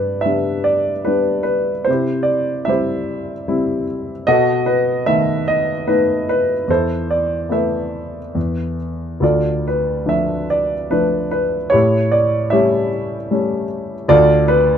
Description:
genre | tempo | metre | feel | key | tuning
classical, lyrical solo piano | 68-77 BPM | 3/4 | rubato | A minor | A4 = 441 Hz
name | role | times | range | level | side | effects
dark grand piano | solo | 0.0-14.8 s | D2 to E5 | -15 LUFS | equal | none
room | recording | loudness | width
moderate booth ambience, RT60 0.2 s | none | -15 LUFS | side -8 dB against mid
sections
0.0-14.8 A section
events
none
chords
0.0 G; 1.9 C; 4.3 B7; 6.7 Esus4; 9.2 Dm; 11.7 A7; 14.1 Dm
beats
0.25 1.07 | 1.88 2.68 3.48 | 4.28 5.06 5.87 | 6.69 7.50 8.36 | 9.22 10.07 10.91 | 11.73 12.53 13.31 | 14.09

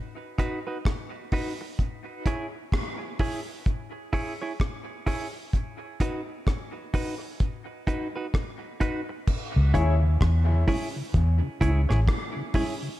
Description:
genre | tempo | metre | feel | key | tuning
dub reggae | 64 BPM | 4/4 | swing 61% on 16ths | C# minor | A4 = 440 Hz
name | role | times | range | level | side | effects
semi-hollow electric guitar | accompaniment | 0.4-12.7 s | D#4 to C#5 | -33 LUFS | right 2 dB | dub echo
deep reggae drum kit | drums | 0.4-12.8 s | crash cymbal, hi-hat, kick drum, rim click | -28 LUFS | equal | none
mellow tonewheel organ | accompaniment | 9.6-12.9 s | C#3 to E4 | -34 LUFS | left 1 dB | chorus vibrato, stopped rotary speaker, dub echo
vintage muted fingered electric bass | bass | 9.6-12.1 s | A1 to E2 | -20 LUFS | equal | none
warm baby grand piano | stabs | 9.7-9.9 s | E4 to E5 | -34 LUFS | left 4 dB | dub echo
room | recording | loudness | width
light reverb, studio reverb | echo-heavy mix | -25 LUFS | side -15 dB against mid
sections
0.0-9.3 A section; 9.3-13.0 B section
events
break 0.0-9.3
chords
0.0 B; 1.8 C#m; 5.5 B; 9.3 C#m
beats
0.85 | 1.79 2.73 3.66 4.60 | 5.53 6.47 7.40 8.34 | 9.27 10.21 11.14 12.07

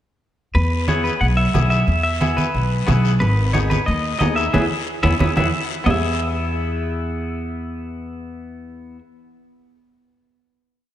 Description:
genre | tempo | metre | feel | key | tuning
latin, cumbia | 181 BPM | 4/4 | straight | E major | A4 = 440 Hz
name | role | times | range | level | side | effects
clean electric guitar | melody | 0.5-9.0 s | G#4 to F#5 | -23 LUFS | left 1 dB | spring reverb
upright bass | bass | 0.5-9.0 s | G#1 to E2 | -20 LUFS | equal | none
guiro | percussion | 0.5-5.9 s | none | -34 LUFS | left 12 dB | none
semi-hollow electric guitar | accompaniment | 0.9-9.0 s | B3 to G#4 | -26 LUFS | left 3 dB | lush chorus
congas | percussion | 0.9-5.9 s | none | -24 LUFS | right 3 dB | none
timbales | percussion | 3.2-5.9 s | none | -29 LUFS | right 4 dB | none
room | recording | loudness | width
moderate lush hall reverb, RT60 2.5 s | dreamy mix soaked in reverb | -17 LUFS | side -12 dB against mid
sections
0.6-5.9 A section; 5.9-8.5 final chord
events
band accent 4.5-5.9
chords
0.6 E; 3.2 G#m; 4.5 E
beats
| 0.55 0.88 1.22 1.55 | 1.88 2.21 2.55 2.88 | 3.21 3.54 3.88 4.21 | 4.54 4.87 5.20 5.53 | 5.86 6.20 6.53 6.86 | 7.18 7.51 7.84 8.17

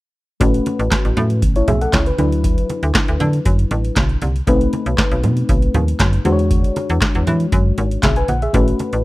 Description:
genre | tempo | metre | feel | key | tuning
early-eighties boogie funk | 118 BPM | 4/4 | straight | A major | A4 = 441 Hz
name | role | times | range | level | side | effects
mellow FM electric piano | accompaniment | 0.4-9.0 s | F#3 to G#5 | -20 LUFS | left 2 dB | chorus
slap-like FM bass | bass | 0.4-9.0 s | G#1 to E3 | -18 LUFS | equal | none
booming analog drum machine | drums | 0.4-9.0 s | handclaps, hi-hat, kick drum, snare drum | -17 LUFS | equal | none
congas | percussion | 0.4-8.9 s | none | -24 LUFS | right 2 dB | none
room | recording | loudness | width
little or no reverb | dry, close 1970s-style studio recording | -14 LUFS | side -19 dB against mid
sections
0.4-9.0 A section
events
none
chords
0.4 A69; 2.2 D69; 4.5 B7b9; 6.3 E13; 8.5 A69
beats
| 0.41 0.91 1.42 1.93 | 2.44 2.95 3.46 3.96 | 4.47 4.98 5.49 6.00 | 6.51 7.02 7.52 8.03 | 8.54

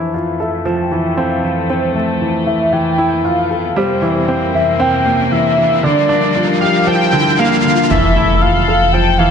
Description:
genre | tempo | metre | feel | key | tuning
piano and strings electronica | 116 BPM | 4/4 | straight | F major | A4 = 440 Hz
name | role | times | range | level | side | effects
warm velvety synth lead | melody | 0.0-9.3 s | C5 to G5 | -17 LUFS | left 1 dB | chorus
rich studio string section | sustained chords | 0.0-9.3 s | F2 to A4 | -20 LUFS | left 3 dB | low-pass filter
warm grand piano | riff | 0.0-9.3 s | D3 to A4 | -16 LUFS | equal | ping-pong delay
riser and impact | sound effects | 3.1-9.3 s | none | -23 LUFS | right 1 dB | none
round analog bass | bass | 7.9-9.3 s | F1 | -17 LUFS | equal | tube saturation
room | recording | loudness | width
moderate lush hall reverb, RT60 2.1 s | none | -12 LUFS | side -7 dB against mid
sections
0.0-7.9 A section; 7.9-9.3 B section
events
build-up 0.0-7.9; filter sweep on soft synth lead 0.0-7.9; riser 3.1-7.9; drop 7.9-9.3; impact 7.9-9.3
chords
0.0 Fmaj7; 3.8 C7/F; 5.8 Gm7; 7.9 Fmaj7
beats
0.14 0.66 1.18 | 1.70 2.21 2.73 3.25 | 3.77 4.28 4.80 5.32 | 5.83 6.35 6.87 7.39 | 7.90 8.42 8.94

